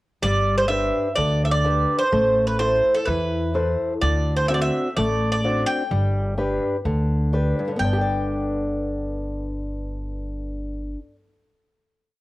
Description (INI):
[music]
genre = greek folk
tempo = 127 BPM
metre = 4/4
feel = straight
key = G major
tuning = A4 = 441 Hz
[part]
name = Greek bouzouki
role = melody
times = 0.2-10.9 s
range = A4 to G5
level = -22 LUFS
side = right 1 dB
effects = cassette tape
[part]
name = fingerpicked old ladder-braced acoustic guitar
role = accompaniment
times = 0.2-11.2 s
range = G2 to D5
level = -25 LUFS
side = left 1 dB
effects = cassette tape
[part]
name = upright bass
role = bass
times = 0.2-10.9 s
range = G1 to E2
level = -24 LUFS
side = equal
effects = none
[sound]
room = light reverb, small room ambience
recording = home recording on cassette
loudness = -20 LUFS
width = side -18 dB against mid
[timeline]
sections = 0.2-7.8 A section; 7.8-11.6 final chord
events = none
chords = 0.2 G; 2.1 Am; 4.0 D7; 5.9 G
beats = | 0.22 0.70 1.17 1.65 | 2.12 2.60 3.07 3.55 | 4.02 4.49 4.97 5.44 | 5.91 6.38 6.85 7.33 | 7.80 8.27 8.74 9.21 | 9.69 10.16 10.63 11.11